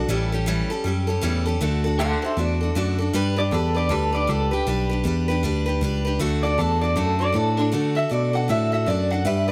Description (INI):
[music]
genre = rockabilly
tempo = 157 BPM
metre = 4/4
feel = swing 62% on 8ths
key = D major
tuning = A4 = 441 Hz
[part]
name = electric guitar through a small old amp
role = melody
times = 0.0-9.5 s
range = D4 to F#5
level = -27 LUFS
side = equal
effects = tremolo, analog delay
[part]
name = picked steel-string acoustic guitar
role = accompaniment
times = 0.0-9.5 s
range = A2 to B4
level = -28 LUFS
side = equal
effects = none
[part]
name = bright tine electric piano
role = bass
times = 0.0-9.5 s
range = A1 to D3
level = -25 LUFS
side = equal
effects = none
[sound]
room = light reverb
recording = none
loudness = -22 LUFS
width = mono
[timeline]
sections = 0.0-3.1 A section; 3.1-9.5 B section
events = clean electric guitar solo 3.1-9.5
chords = 0.1 A7; 1.6 D; 3.1 G; 6.2 D